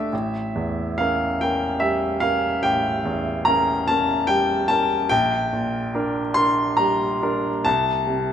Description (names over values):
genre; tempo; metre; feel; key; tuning
classical, romantic nocturne for solo piano; 45-50 BPM (dotted quarters); 12/8; rubato; G minor from 5.1 s; A4 = 439 Hz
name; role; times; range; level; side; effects
clear baby grand piano; solo; 0.0-8.3 s; A1 to C6; -19 LUFS; equal; none
room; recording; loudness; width
moderate recital hall reverb, RT60 1.7 s; none; -19 LUFS; side -9 dB against mid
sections
0.0-8.3 A section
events
none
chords
0.1 A7b9; 5.1 Gm/Bb; 7.7 Am/C